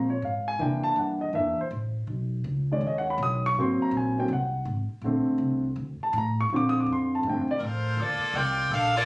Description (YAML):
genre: jazz, big band swing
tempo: 162 BPM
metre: 4/4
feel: swing 66% on 8ths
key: Bb major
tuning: A4 = 442 Hz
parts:
  - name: warm grand piano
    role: accompaniment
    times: 0.0-8.0 s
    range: D3 to D#6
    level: -25 LUFS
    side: equal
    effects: none
  - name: upright bass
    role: bass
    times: 0.0-9.1 s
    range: Ab1 to C3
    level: -30 LUFS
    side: equal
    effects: none
  - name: edgy saxophone section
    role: melody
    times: 7.6-9.1 s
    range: Bb3 to G5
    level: -24 LUFS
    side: equal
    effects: none
room: moderate club reverb, RT60 0.7 s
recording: recorded on a phone in the room, studio reverb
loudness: -24 LUFS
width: side -24 dB against mid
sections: 0.0-8.0 A section; 8.0-9.1 B section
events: grand piano solo 0.0-8.0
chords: 0.0 Gbmaj9 (rootless); 0.6 C9; 2.1 B69; 3.6 Ab9; 5.0 Bbmaj7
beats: 0.21 | 0.59 0.96 1.33 1.70 | 2.07 2.44 2.81 3.19 | 3.56 3.92 4.29 4.66 | 5.03 5.40 5.77 6.14 | 6.51 6.87 7.24 7.61 | 7.98 8.34 8.71